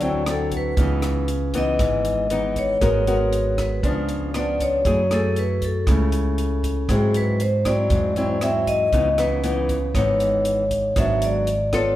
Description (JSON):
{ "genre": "bossa nova", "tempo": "118 BPM", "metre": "4/4", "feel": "straight", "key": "unclear", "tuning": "A4 = 442 Hz", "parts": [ { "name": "vibraphone with medium hard mallets", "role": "melody", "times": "0.0-12.0 s", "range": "G#4 to E5", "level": "-23 LUFS", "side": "left 1 dB", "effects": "none" }, { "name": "nylon-string guitar", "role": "accompaniment", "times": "0.0-12.0 s", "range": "G#2 to A#4", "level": "-24 LUFS", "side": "left 1 dB", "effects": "none" }, { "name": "upright bass", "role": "bass", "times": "0.0-11.9 s", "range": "G#1 to G#2", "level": "-24 LUFS", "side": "right 1 dB", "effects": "none" }, { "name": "compact cocktail drum kit", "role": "drums", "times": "0.0-11.8 s", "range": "hi-hat, kick drum, rim click", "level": "-27 LUFS", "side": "right 1 dB", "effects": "none" } ], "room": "moderate recital hall reverb, RT60 1.3 s", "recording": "recorded in a church or concert hall", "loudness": "-18 LUFS", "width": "side -14 dB against mid", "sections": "0.0-12.0 A section", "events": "none", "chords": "0.0 D9; 0.8 C#m9; 2.8 G#m9; 3.8 C#7b9; 4.9 F#m9; 6.9 G#aug7; 8.9 C#m9; 11.0 G#m7b5" }